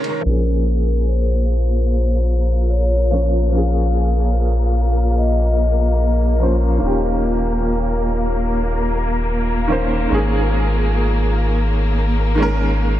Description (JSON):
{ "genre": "trip hop", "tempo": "73 BPM", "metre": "4/4", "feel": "straight", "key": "Bb minor", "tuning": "A4 = 443 Hz", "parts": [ { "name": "bright upright piano", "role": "accompaniment", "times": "0.0-13.0 s", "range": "Eb3 to Db5", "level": "-23 LUFS", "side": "right 1 dB", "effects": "tremolo, tape echo" }, { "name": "wind-like tuned noise texture", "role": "texture", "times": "0.0-13.0 s", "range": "Db4 to F5", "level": "-29 LUFS", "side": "left 2 dB", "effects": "built-in reverb" }, { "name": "vibraphone with soft mallets", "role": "melody", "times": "0.2-6.4 s", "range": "Bb4 to F5", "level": "-26 LUFS", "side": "left 4 dB", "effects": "vintage 12-bit sampler grit, dub echo" }, { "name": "bright studio string section", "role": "sustained chords", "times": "0.2-13.0 s", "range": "Bb3", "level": "-24 LUFS", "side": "left 1 dB", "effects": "none" }, { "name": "soft dub sub bass", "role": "bass", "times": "0.3-13.0 s", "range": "Eb1 to Bb1", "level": "-17 LUFS", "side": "equal", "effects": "none" } ], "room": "moderate lush hall reverb, RT60 3.0 s", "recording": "dreamy mix soaked in reverb, vinyl crackle, low-pass filter", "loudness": "-15 LUFS", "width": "side -13 dB against mid", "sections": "0.2-13.0 A section", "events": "break 0.0; filter sweep 0.2-13.0", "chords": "0.2 Bbm7; 6.8 Eb7; 10.1 Absus4", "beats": "| 0.24 1.06 1.89 2.71 | 3.53 4.35 5.17 6.00 | 6.82 7.64 8.46 9.28 | 10.11 10.93 11.75 12.57" }